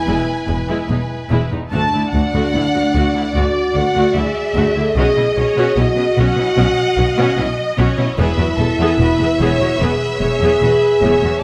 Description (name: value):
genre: cinematic, epic orchestral film score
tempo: 74 BPM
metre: 4/4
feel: straight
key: E major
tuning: A4 = 438 Hz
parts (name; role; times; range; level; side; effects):
- rich studio violin section; melody; 0.0-11.4 s; B4 to E5; -28 LUFS; equal; none
- warm symphonic violin section; second line; 0.0-11.4 s; A4 to A5; -25 LUFS; equal; none
- dark French horn section; sustained chords; 0.0-11.4 s; D4 to A4; -20 LUFS; equal; none
- warm symphonic viola section; accompaniment; 0.1-11.3 s; G#3 to G#4; -26 LUFS; equal; none
- clear symphonic cello section; bass; 0.1-11.3 s; D2 to B2; -23 LUFS; equal; none
- rich studio double bass section; bass; 0.1-11.1 s; E1 to D2; -24 LUFS; equal; none
room: moderate scoring stage reverb, RT60 1.5 s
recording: none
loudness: -16 LUFS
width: mono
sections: 0.0-11.4 A section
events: none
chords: 0.0 E; 1.7 D; 5.0 Badd9; 8.2 E